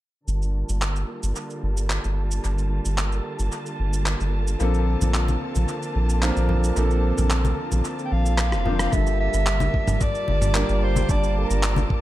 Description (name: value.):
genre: sunset chillout.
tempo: 111 BPM.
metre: 4/4.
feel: straight.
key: G minor.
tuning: A4 = 440 Hz.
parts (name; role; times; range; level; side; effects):
rich studio string section; sustained chords; 0.3-12.0 s; D3 to A5; -32 LUFS; right 1 dB; vintage 12-bit sampler grit, low-pass filter.
round analog bass; bass; 0.3-11.9 s; F1 to Bb1; -22 LUFS; equal; none.
dusty soul sampler-style drum kit; drums; 0.3-11.9 s; cabasa, handclaps, rim click, toms; -29 LUFS; right 1 dB; dub echo.
wind-like tuned noise texture; texture; 1.2-12.0 s; A4 to D6; -37 LUFS; equal; built-in reverb.
bright concert grand piano; accompaniment; 4.6-12.0 s; F3 to A5; -28 LUFS; moving between left 7 dB and right 3 dB; auto-pan, vintage 12-bit sampler grit, low-pass filter, tape echo.
congas; percussion; 5.0-11.9 s; none; -29 LUFS; left 3 dB; none.
mellow soprano saxophone; melody; 8.1-11.9 s; Bb4 to G5; -27 LUFS; right 1 dB; tape echo.
electronic kick drum; drums; 8.9-12.0 s; none; -23 LUFS; equal; none.
room: little or no reverb.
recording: echo-heavy mix.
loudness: -20 LUFS.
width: side -15 dB against mid.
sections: 0.3-8.9 A section; 8.9-12.0 B section.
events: filter sweep on analog synth bass 0.3-8.9; filter sweep on string section 0.3-8.9; drum fill 8.4-8.9; filter sweep on grand piano 8.9-12.0.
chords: 0.3 Gm9; 4.6 Bbmaj9; 8.9 Gm9.